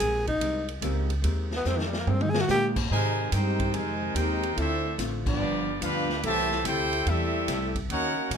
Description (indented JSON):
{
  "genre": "jazz, big band swing",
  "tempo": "145 BPM",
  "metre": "4/4",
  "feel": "swing 66% on 8ths",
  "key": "unclear",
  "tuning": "A4 = 440 Hz",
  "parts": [
    { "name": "warm tenor saxophone", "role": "melody", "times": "0.0-2.7 s", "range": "Eb3 to Ab4", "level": "-27 LUFS", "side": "equal", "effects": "none" },
    { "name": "archtop guitar, miked and amplified", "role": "accompaniment", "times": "0.0-8.4 s", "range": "G2 to Bb4", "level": "-36 LUFS", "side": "left 5 dB", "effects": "none" },
    { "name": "upright bass", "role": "bass", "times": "0.0-8.4 s", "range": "G1 to Bb2", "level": "-30 LUFS", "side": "equal", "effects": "none" },
    { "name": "swinging big-band drum kit", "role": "drums", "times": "0.0-8.4 s", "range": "crash cymbal, hi-hat, kick drum, ride cymbal, snare drum, toms", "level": "-33 LUFS", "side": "equal", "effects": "none" },
    { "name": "warm grand piano", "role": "accompaniment", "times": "0.8-2.7 s", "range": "Ab3 to G4", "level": "-36 LUFS", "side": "right 6 dB", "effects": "none" },
    { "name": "clear trumpet section", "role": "melody", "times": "2.9-8.4 s", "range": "Cb4 to A5", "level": "-29 LUFS", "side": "equal", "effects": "none" },
    { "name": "warm trombone section", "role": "second line", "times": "2.9-8.4 s", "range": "A2 to G4", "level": "-31 LUFS", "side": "right 2 dB", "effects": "none" }
  ],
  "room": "light reverb",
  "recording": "minimal, uncompressed stereo recording",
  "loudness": "-24 LUFS",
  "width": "side -7 dB against mid",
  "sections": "0.0-2.9 A section; 2.9-8.4 B section",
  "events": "tenor saxophone solo 0.0-2.9; drum fill 1.7-2.5; band accent 5.2",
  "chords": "0.0 Abmaj9; 4.6 Dm7; 5.4 G7; 6.2 C6"
}